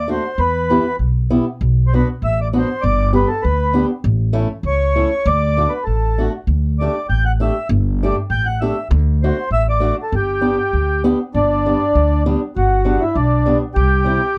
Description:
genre	alpine folk, alpine dance band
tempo	99 BPM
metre	2/4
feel	straight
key	G major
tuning	A4 = 441 Hz
part	mellow accordion	melody	0.0-14.4 s	D4 to G5	-21 LUFS	equal	none
part	upright bass	bass	0.0-14.2 s	G1 to E2	-20 LUFS	equal	none
part	fingerpicked swing-style acoustic guitar	accompaniment	0.1-14.2 s	G3 to G4	-22 LUFS	equal	none
room	light reverb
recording	dark, warm production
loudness	-17 LUFS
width	mono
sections	0.0-11.3 A section; 11.3-14.4 B section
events	none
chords	0.4 Em; 1.6 Bm; 2.8 G; 4.0 A; 5.2 D; 6.5 Dsus4; 7.7 Gsus2; 8.9 D; 10.1 G; 13.8 C

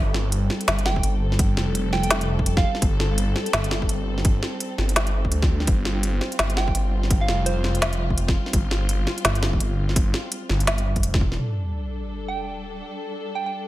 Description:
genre	half-time drum and bass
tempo	168 BPM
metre	4/4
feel	swing 60% on 16ths, half-time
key	unclear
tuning	A4 = 439 Hz
part	dark studio string section	sustained chords	0.0-13.7 s	G3 to A4	-30 LUFS	left 1 dB	sidechain pumping
part	phased detuned saw bass	bass	0.0-11.4 s	F1 to D2	-23 LUFS	equal	phaser
part	organic electronic drum kit	drums	0.1-11.4 s	hi-hat, snare drum	-26 LUFS	equal	overdrive
part	soft synth bell	melody	0.9-2.7, 6.6-7.8, 12.3-13.5 s	C5 to G5	-30 LUFS	right 5 dB	chorus, tape echo
part	electronic kick drum	drums	1.0-11.3 s	none	-22 LUFS	equal	none
part	sub drop	sound effects	11.4-12.8 s	none	-29 LUFS	equal	none
room	digital ambience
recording	none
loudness	-20 LUFS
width	side -16 dB against mid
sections	0.0-11.4 A section; 11.4-13.7 B section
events	drop 0.0-11.4; impact 11.4-12.8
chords	0.0 Gsus2

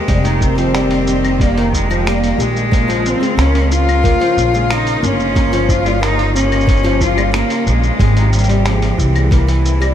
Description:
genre	folktronica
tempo	91 BPM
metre	4/4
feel	straight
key	F minor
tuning	A4 = 440 Hz
part	clear cello	melody	0.0-9.9 s	E3 to F4	-17 LUFS	left 1 dB	vintage 12-bit sampler grit, diffuse ambient delay
part	clear string quartet	sustained chords	0.0-9.9 s	C3 to G4	-24 LUFS	left 1 dB	none
part	nylon-string guitar	arpeggios	0.0-9.9 s	Eb3 to G4	-20 LUFS	left 1 dB	ensemble chorus, diffuse ambient delay
part	upright bass	bass	0.1-9.9 s	F1 to Db2	-16 LUFS	equal	none
part	electronic kick drum	drums	0.1-9.4 s	none	-15 LUFS	equal	none
part	lo-fi sampler-style drum kit	drums	0.1-9.9 s	claves, finger snaps, hi-hat, shaker	-25 LUFS	left 1 dB	none
room	moderate huge ambient reverb, RT60 7.3 s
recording	dreamy mix soaked in reverb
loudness	-12 LUFS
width	side -10 dB against mid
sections	0.0-9.9 A section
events	none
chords	0.1 F9sus4; 2.7 Bbm; 5.4 Gm7b5; 8.0 Abmaj9; 9.3 C7

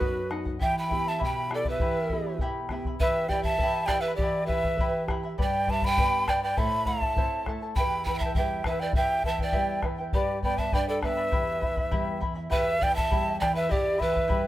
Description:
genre	andean folk, Andean ensemble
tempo	101 BPM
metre	2/4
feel	straight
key	E minor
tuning	A4 = 440 Hz
part	breathy bright quena	melody	0.0-14.5 s	B4 to B5	-28 LUFS	equal	none
part	breathy bright pan flute	second line	0.0-14.5 s	F#4 to G5	-31 LUFS	right 3 dB	none
part	charango	accompaniment	0.0-14.5 s	E4 to B5	-34 LUFS	left 1 dB	none
part	nylon-string guitar	accompaniment	0.0-14.5 s	E2 to B4	-34 LUFS	equal	none
part	bombo	percussion	0.0-14.4 s	none	-30 LUFS	left 1 dB	none
room	light reverb, small room reverb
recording	rough home demo mix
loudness	-24 LUFS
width	side -14 dB against mid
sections	0.0-3.0 A section; 3.0-12.5 B section; 12.5-14.5 B section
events	none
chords	0.0 B; 0.6 Em; 5.4 G; 6.6 Am; 7.8 Em; 10.1 G; 11.3 Em

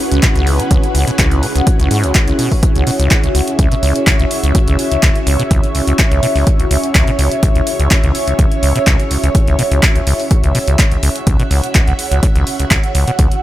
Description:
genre	acid house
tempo	125 BPM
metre	4/4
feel	swing 53% on 16ths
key	C# minor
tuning	A4 = 440 Hz
part	string machine, full ensemble	sustained chords	0.0-13.4 s	C#4 to E5	-23 LUFS	equal	ensemble chorus, sidechain pumping
part	airy breathy pad	texture	0.0-13.4 s	C#4 to F#5	-20 LUFS	equal	chorus, phaser, sidechain pumping
part	acid bass, saw	riff	0.1-13.3 s	C#2 to C#3	-16 LUFS	equal	tube saturation
part	punchy analog drum machine	drums	0.1-13.4 s	handclaps, hi-hat	-19 LUFS	equal	none
part	electronic kick drum	drums	0.2-13.3 s	none	-13 LUFS	equal	none
room	light reverb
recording	none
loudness	-11 LUFS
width	side -14 dB against mid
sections	0.0-13.4 A section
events	none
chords	0.0 C#m

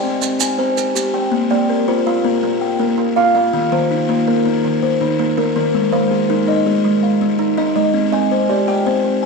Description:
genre	southern african traditional, mbira-style interlocking cycle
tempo	109 BPM (dotted quarters)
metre	12/8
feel	straight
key	Bb mixolydian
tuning	A4 = 440 Hz
part	buzzing kalimba	arpeggios	0.0-9.3 s	Eb3 to Ab5	-16 LUFS	left 5 dB	slapback echo
part	kalimba	arpeggios	0.0-9.3 s	Eb3 to F5	-18 LUFS	right 7 dB	slapback echo
part	maracas	percussion	0.2-1.1 s	none	-23 LUFS	right 10 dB	none
room	wet echo chamber reverb, RT60 1.8 s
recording	1960s-style stereo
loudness	-14 LUFS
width	side -3 dB against mid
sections	0.0-1.3 A section; 1.3-9.3 B section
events	none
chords	0.0 C5; 1.3 Bb; 3.5 Eb; 5.7 Ab; 7.9 Cm

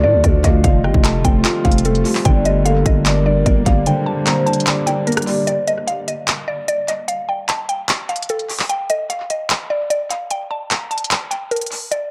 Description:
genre	hip hop, trap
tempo	149 BPM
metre	4/4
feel	half-time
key	G minor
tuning	A4 = 440 Hz
part	mallet-like synth pluck	melody	0.0-12.1 s	A4 to Bb5	-24 LUFS	equal	chorus, phaser, low-pass filter, analog delay
part	hollow clarinet-like synth lead	second line	0.0-5.5 s	A4 to F5	-26 LUFS	equal	chorus, analog delay
part	dark concert grand piano	accompaniment	0.0-5.5 s	D3 to D5	-23 LUFS	equal	low-pass filter, analog delay
part	granular cloud pad	sustained chords	0.1-5.4 s	D3 to F4	-28 LUFS	equal	built-in reverb
part	growling 808-style bass	bass	0.0-3.9 s	F1 to A2	-20 LUFS	equal	none
part	trap drum kit	drums	0.2-12.0 s	handclaps, hi-hat, kick drum, rim click	-21 LUFS	equal	none
room	light reverb, digital ambience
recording	echo-heavy mix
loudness	-18 LUFS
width	mono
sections	0.0-5.5 A section; 5.5-12.1 B section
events	break 3.9-5.5, 5.5-11.9; kick muted 11.9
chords	0.0 Dm; 0.6 Fadd9; 2.3 Gm; 5.5 N.C.

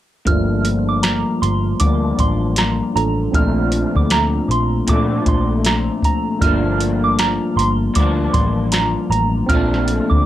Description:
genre	indie pop, bedroom pop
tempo	78 BPM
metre	4/4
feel	swing 60% on 16ths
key	unclear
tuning	A4 = 439 Hz
part	soft synth bell	second line	0.3-10.2 s	Bb5 to F6	-22 LUFS	right 3 dB	wide subtle chorus, tape echo
part	electric guitar at the edge of break-up	accompaniment	0.3-10.3 s	G2 to D4	-20 LUFS	left 4 dB	analog chorus, warbly pitch drift, low-pass filter
part	tine electric piano	accompaniment	0.3-10.3 s	A3 to A4	-25 LUFS	right 5 dB	medium stereo tremolo, low-pass filter
part	vintage muted picked electric bass	bass	0.3-10.3 s	G1 to Bb2	-20 LUFS	equal	none
part	soft vintage rhythm box	drums	0.3-10.3 s	hi-hat, kick drum, snare drum	-19 LUFS	equal	overdrive
room	light reverb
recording	none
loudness	-15 LUFS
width	side -13 dB against mid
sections	0.3-10.3 A section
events	filter sweep 0.3-10.3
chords	0.3 Gm7; 3.3 Bbmaj7; 6.4 Gm7; 9.5 Bbmaj7

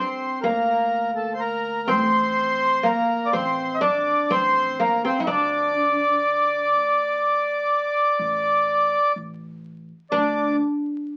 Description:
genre	Arabic maqam ensemble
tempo	124 BPM (eighths)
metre	10/8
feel	straight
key	unclear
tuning	A4 = 439 Hz
part	accordion	melody	0.0-10.6 s	A4 to E5-50c	-23 LUFS	equal	none
part	oud	second line	0.0-10.6 s	Bb3 to E4-50c	-26 LUFS	equal	none
part	upright bass	bass	0.4-10.6 s	A1 to D2	-36 LUFS	equal	none
room	moderate studio reverb, RT60 0.5 s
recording	very old 78 rpm record, vinyl crackle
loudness	-22 LUFS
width	mono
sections	0.0-10.1 A section; 10.1-11.2 B section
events	none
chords	none

